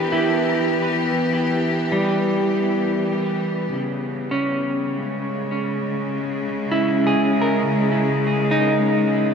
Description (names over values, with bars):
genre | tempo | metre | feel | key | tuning
ambient | 50 BPM | 3/4 | straight | unclear | A4 = 440 Hz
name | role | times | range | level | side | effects
clear chamber string section | sustained chords | 0.0-9.3 s | C#3 to G4 | -21 LUFS | left 1 dB | none
clean electric guitar | arpeggios | 0.0-9.3 s | G3 to B4 | -22 LUFS | right 1 dB | vibrato effect, tape echo
room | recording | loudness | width
wet cathedral reverb, RT60 6.3 s | none | -18 LUFS | side -6 dB against mid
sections
0.0-9.3 A section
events
none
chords
0.0 Em; 3.7 C#m7